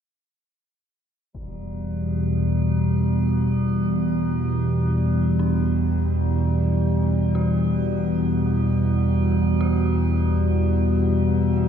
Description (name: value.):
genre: dark ambient drone.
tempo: free time.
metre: none.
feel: none.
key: E minor.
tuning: A4 = 440 Hz.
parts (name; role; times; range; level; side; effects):
deep dark ambient pad; sustained chords; 3.6-11.7 s; E4 to F#5; -36 LUFS; equal; chorus, built-in reverb, shimmer reverb.
analog drone; drone; 1.6-11.7 s; E2 to B2; -20 LUFS; equal; lush chorus.
impact; percussion; 1.3-1.6 s; none; -45 LUFS; left 1 dB; none.
metallic inharmonic drone; texture; 1.6-11.7 s; G3; -25 LUFS; equal; chorus, built-in reverb, shimmer reverb.
dark detuned synth bell; arpeggios; 5.4-11.7 s; D4 to F#4; -38 LUFS; right 1 dB; chorus, tape echo, shimmer reverb.
room: moderate huge ambient reverb, RT60 8.1 s.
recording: none.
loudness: -19 LUFS.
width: side -8 dB against mid.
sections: 1.3-11.7 A section.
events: fade-in on ambient pad 1.3-11.7; fade-in on synth bell 1.3-11.7.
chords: 1.3 Emadd9.